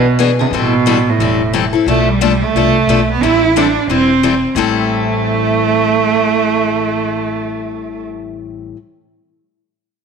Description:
acoustic string swing (jazz manouche); 178 BPM; 4/4; swing 60% on 8ths; A minor; A4 = 440 Hz
rich cello; melody; 0.0-8.0 s; A2 to E4; -14 LUFS; right 5 dB
picked steel-string acoustic guitar; accompaniment; 0.0-8.8 s; A2 to A4; -17 LUFS; left 9 dB
upright bass; bass; 0.0-8.7 s; E1 to C2; -21 LUFS; left 2 dB
wet echo chamber reverb, RT60 1.5 s, small room ambience; 1960s-style stereo; -11 LUFS; side -6 dB against mid
0.0-1.9 A section; 1.9-4.6 B section; 4.6-7.3 C section
0.0 E7; 0.5 Am7; 1.9 Bm7b5; 3.2 Am7

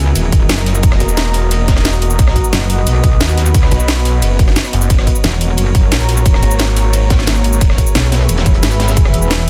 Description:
dark technical drum and bass; 177 BPM; 4/4; straight; A4 = 439 Hz
deep dark ambient pad; sustained chords; 0.0-9.5 s; Bb3 to E5; -26 LUFS; equal; chorus, built-in reverb, sidechain pumping
metallic wobble bass; bass; 0.0-9.5 s; Eb1 to D#2; -16 LUFS; equal; distortion, chorus
airy breathy pad; texture; 0.0-9.5 s; Gb4 to B5; -25 LUFS; equal; chorus, sidechain pumping
crunchy breakbeat drum kit; drums; 0.2-9.5 s; hi-hat, snare drum; -28 LUFS; equal
drum and bass drum kit; drums; 0.2-9.5 s; hi-hat, ride cymbal, rim click, shaker, snare drum; -22 LUFS; equal; overdrive
electronic kick drum; drums; 0.3-9.0 s; -15 LUFS; equal
snarling distorted saw bass; bass; 1.0-7.8 s; Fb1 to B1; -17 LUFS; equal; distortion, tube saturation
digital ambience; dense, heavily limited modern master; -13 LUFS; mono
0.0-9.5 A section
0.0 Ebm; 2.2 B; 4.9 Gb; 7.6 E

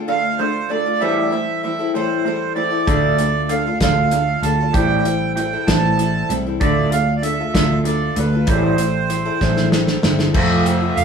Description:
folk rock and heartland rock; 64 BPM (dotted quarters); 6/8; straight; D minor; A4 = 441 Hz
picked twelve-string acoustic guitar; accompaniment; 0.0-11.0 s; A2 to A4; -24 LUFS; left 5 dB
electric guitar through a small old amp; riff; 0.0-11.0 s; F2 to F4; -23 LUFS; right 2 dB; phaser
accordion; melody; 0.1-11.0 s; B4 to A5; -21 LUFS; right 7 dB
picked electric bass; bass; 2.9-11.0 s; F1 to D2; -20 LUFS; equal
natural country drum kit; drums; 2.9-11.0 s; crash cymbal, hi-hat, kick drum, snare drum; -20 LUFS; equal
moderate studio reverb, RT60 0.5 s; band playing live in one room, studio reverb; -15 LUFS; side -6 dB against mid
0.0-10.3 A section
drum fill 9.4-10.3
0.0 Dm; 1.0 Am7; 2.9 Dm; 4.7 Am7; 6.6 Dm; 8.5 Am7; 10.3 F

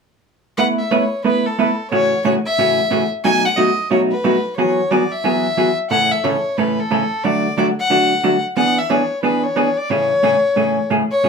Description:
country; 180 BPM; 4/4; swing 64% on 8ths; A major; A4 = 441 Hz
warm fiddle; melody; 0.6-11.3 s; A4 to G#5; -18 LUFS; left 2 dB
vintage hollow-body jazz guitar; accompaniment; 0.6-11.3 s; F#2 to B4; -17 LUFS; right 2 dB
wet studio ambience, RT60 0.5 s; band playing live in one room; -15 LUFS; side -5 dB against mid
0.6-11.3 A section
0.6 Asus2; 1.9 F#m7/A; 3.2 B7; 4.6 Eadd9; 5.9 A; 7.2 D; 8.6 E7; 9.9 Amaj7

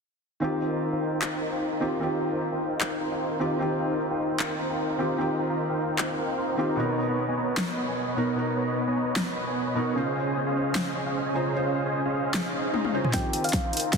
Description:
future bass; 151 BPM; 4/4; swing 55% on 16ths, half-time; Eb mixolydian; A4 = 440 Hz
felt-muted upright piano; accompaniment; 0.4-14.0 s; B2 to C5; -29 LUFS; right 1 dB; sidechain pumping, digital delay
dense compressed supersaw; riff; 0.4-14.0 s; B3 to Db6; -28 LUFS; equal; sidechain pumping, low-pass filter, digital delay
big-room dance drum kit; drums; 1.2-14.0 s; handclaps, hi-hat, snare drum, toms; -32 LUFS; left 1 dB; overdrive, studio reverb
swell and riser; sound effects; 12.5-14.0 s; -35 LUFS; left 3 dB
thumb-piano-like synth pluck; melody; 13.1-13.8 s; F5 to G5; -30 LUFS; left 2 dB; chorus, sidechain pumping, dub echo
electronic kick drum; drums; 13.1-14.0 s; -28 LUFS; equal; overdrive, studio reverb
moderate huge ambient reverb, RT60 4.4 s; dense, heavily limited modern master; -25 LUFS; side -5 dB against mid
0.4-13.1 A section
swell 12.5-13.1; drum fill 12.7-13.1, 13.1-14.0
0.4 Eb69; 6.8 Bmaj7; 10.0 Dbmaj7; 13.1 Eb69

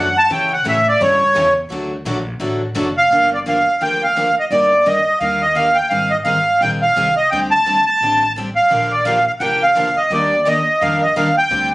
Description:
acoustic string swing (jazz manouche); 172 BPM; 4/4; swing 60% on 8ths; G minor from 3.1 s; A4 = 441 Hz
accordion; melody; 0.0-11.7 s; C#5 to A5; -13 LUFS; right 1 dB; light tremolo tuning
picked steel-string acoustic guitar; accompaniment; 0.0-11.7 s; C#3 to Ab4; -24 LUFS; left 1 dB
picked swing-style acoustic guitar; accompaniment; 0.0-2.9, 8.7-11.7 s; C#3 to C#5; -27 LUFS; right 1 dB
upright bass; bass; 0.0-11.7 s; F1 to C#3; -29 LUFS; equal
moderate studio reverb, RT60 0.5 s; recorded on a phone in the room, studio reverb; -13 LUFS; side -19 dB against mid
0.0-3.1 A section; 3.1-11.7 B section
accordion solo 0.0-3.1
0.3 A7; 1.7 D; 3.1 Gm7; 4.5 Ebmaj7/G; 5.9 Abmaj7; 7.3 D7sus4; 8.7 Bb6; 10.1 Ebmaj7

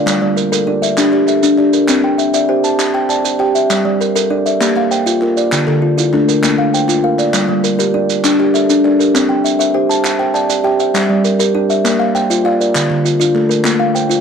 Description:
southern african traditional, mbira-style interlocking cycle; 132 BPM (dotted quarters); 12/8; straight; G dorian; A4 = 439 Hz
kalimba; arpeggios; 0.0-14.2 s; D3 to A5; -14 LUFS; left 4 dB
kalimba; arpeggios; 0.0-14.2 s; D3 to G5; -16 LUFS; right 6 dB
group handclap; percussion; 0.1-13.8 s; -24 LUFS; left 2 dB
maracas; percussion; 0.1-14.2 s; -22 LUFS; right 13 dB
wet studio reverb, RT60 0.6 s; -11 LUFS; side -6 dB against mid
0.0-7.3 A section; 7.3-14.2 B section
0.1 Gm; 1.9 C; 3.7 Gm; 4.6 Bb; 5.5 Dm; 6.4 Bb; 7.3 Gm; 9.1 C; 11.0 Gm; 11.9 Bb; 12.8 Dm; 13.7 Bb5

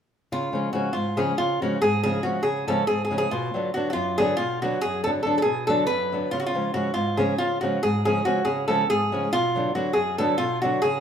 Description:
balkan folk; 279 BPM (eighths); 7/8; straight; C# phrygian dominant; A4 = 440 Hz
lap resonator guitar; melody; 0.3-11.0 s; E#4 to B4; -24 LUFS; right 1 dB
flamenco guitar; accompaniment; 0.3-11.0 s; F#2 to D4; -26 LUFS; left 1 dB
moderate large studio reverb, RT60 0.9 s; band playing live in one room; -22 LUFS; side -8 dB against mid
0.3-11.0 A section
0.3 C#; 3.3 Bm; 6.3 C#; 9.3 Bm

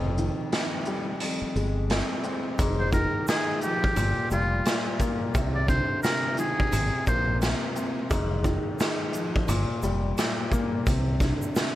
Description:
hip hop, boom-bap hip-hop; 87 BPM; 4/4; swing 60% on 16ths; F dorian; A4 = 440 Hz
dark upright piano; accompaniment; 0.0-11.8 s; F2 to C4; -30 LUFS; left 2 dB; high-pass filter, low-pass filter
fingered electric bass; bass; 0.0-11.3 s; F1 to C2; -27 LUFS; equal
raw garage drum kit; drums; 0.2-11.8 s; hi-hat, kick drum, shaker, snare drum; -28 LUFS; equal; vintage 12-bit sampler grit
egg shaker; percussion; 2.6-11.7 s; -44 LUFS; right 3 dB
trumpet with metal mute; melody; 2.8-7.4 s; F4 to D5; -29 LUFS; equal; high-pass filter, low-pass filter, digital delay
studio reverb; vinyl crackle; -24 LUFS; side -14 dB against mid
0.0-2.6 A section; 2.6-11.8 B section
kick muted 1.2-2.6
0.0 Abmaj7/F; 2.6 Fm7; 4.0 Gm7; 5.3 Cmadd9; 6.7 Abadd9; 8.1 Fm7; 9.5 Gm7; 10.9 Csus2

